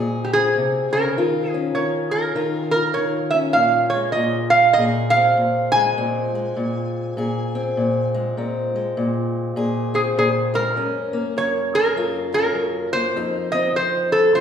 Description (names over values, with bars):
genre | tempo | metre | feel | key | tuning
acoustic country blues, solo or duo | 100 BPM | 4/4 | swing 61% on 8ths | Bb minor | A4 = 440 Hz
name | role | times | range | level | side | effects
fingerpicked steel-string acoustic guitar | accompaniment | 0.0-14.4 s | F2 to Ab4 | -22 LUFS | left 2 dB | none
metal-body resonator slide guitar | melody | 0.2-14.4 s | G4 to Ab5 | -18 LUFS | right 2 dB | none
room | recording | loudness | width
wet recital hall reverb, RT60 1.6 s | recorded in a church or concert hall | -18 LUFS | side -8 dB against mid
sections
0.0-14.4 A section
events
none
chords
0.0 Bbm9; 1.2 Ebsus2; 3.6 Bbsus2; 10.8 Gbmaj7; 13.2 F7(no3)